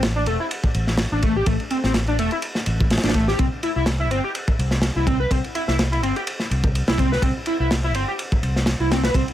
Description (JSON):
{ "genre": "breakbeat, breaks", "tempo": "125 BPM", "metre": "4/4", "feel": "swing 55% on 16ths", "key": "unclear", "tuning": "A4 = 440 Hz", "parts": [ { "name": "fingered electric bass", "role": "bass", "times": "0.0-9.2 s", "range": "E1 to C2", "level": "-23 LUFS", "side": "equal", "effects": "tube saturation" }, { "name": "crunchy breakbeat drum kit", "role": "drums", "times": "0.0-9.3 s", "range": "kick drum, ride cymbal, snare drum", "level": "-22 LUFS", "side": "equal", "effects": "none" }, { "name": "overdriven synth lead", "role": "riff", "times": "0.2-9.2 s", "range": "A3 to B4", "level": "-24 LUFS", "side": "equal", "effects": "distortion, tube saturation, ensemble chorus, ping-pong delay" } ], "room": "little or no reverb", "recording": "none", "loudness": "-19 LUFS", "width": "side -12 dB against mid", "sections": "0.0-9.3 A section", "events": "none", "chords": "0.0 N.C.; 3.4 C", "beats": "0.03 0.51 0.99 | 1.47 1.95 2.43 2.91 | 3.39 3.87 4.35 4.83 | 5.31 5.79 6.27 6.75 | 7.23 7.71 8.19 8.67 | 9.15" }